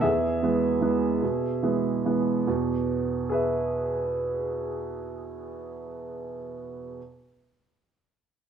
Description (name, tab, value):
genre	classical, piano waltz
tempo	147 BPM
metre	3/4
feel	uneven beats, rubato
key	E major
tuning	A4 = 440 Hz
part	clear upright piano	solo	0.0-7.0 s	E2 to E5	-25 LUFS	right 2 dB	none
room	moderate large studio reverb, RT60 1.1 s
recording	worn, warbling old tape, cassette tape, warbly pitch drift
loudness	-24 LUFS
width	side -8 dB against mid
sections	0.0-2.5 A section; 2.5-4.9 B section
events	slowing down 0.0-2.5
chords	0.0 E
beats	| 0.02 0.41 0.81 | 1.21 1.61 2.04 | 2.46 2.87 3.28 | 3.69 4.09 4.49